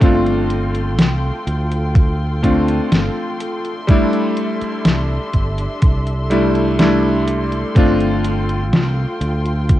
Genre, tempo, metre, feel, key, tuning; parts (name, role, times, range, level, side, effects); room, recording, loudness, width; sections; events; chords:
vaporwave; 62 BPM; 4/4; straight; C major; A4 = 440 Hz
bright electric grand piano; accompaniment; 0.0-9.8 s; G3 to F4; -18 LUFS; equal; lush chorus, tape echo
dark studio string section; sustained chords; 0.0-9.8 s; D4 to C6; -26 LUFS; left 1 dB
modern bright fingered electric bass; bass; 0.0-9.8 s; G1 to D2; -20 LUFS; equal
detuned 8-bit digital drum machine; drums; 0.0-9.8 s; hi-hat, snare drum; -18 LUFS; equal; overdrive, studio reverb
electronic kick drum; drums; 0.0-9.8 s; -13 LUFS; equal; overdrive, studio reverb
light reverb; rough home demo mix, cassette tape; -14 LUFS; side -14 dB against mid
0.0-9.8 A section
0.0 G9sus4; 3.9 C69; 7.8 G9sus4